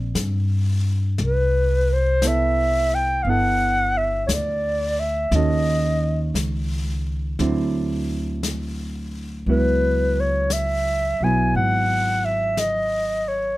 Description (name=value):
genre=jazz ballad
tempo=58 BPM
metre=4/4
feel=swing 67% on 8ths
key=unclear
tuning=A4 = 441 Hz
part: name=hollow-body jazz guitar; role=accompaniment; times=0.0-13.6 s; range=D3 to A4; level=-26 LUFS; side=right 3 dB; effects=none
part: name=upright bass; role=bass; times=0.0-13.6 s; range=G1 to G2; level=-23 LUFS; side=equal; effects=none
part: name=jazz brush drum kit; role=drums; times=0.2-13.6 s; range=brushed snare drum, hi-hat, snare drum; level=-33 LUFS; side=left 4 dB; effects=none
part: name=breathy clarinet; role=melody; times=1.2-13.6 s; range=B4 to G#5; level=-21 LUFS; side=equal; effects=none
room=little or no reverb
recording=close, detailed microphones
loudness=-19 LUFS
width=side -17 dB against mid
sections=0.0-13.6 A section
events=none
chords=0.0 A#add9 (rootless); 1.2 Cmaj13; 5.3 D#m7b5; 7.4 D9; 9.5 C#m7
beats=0.15 | 1.18 2.21 3.24 4.28 | 5.31 6.34 7.38 8.42 | 9.46 10.50 11.53 12.57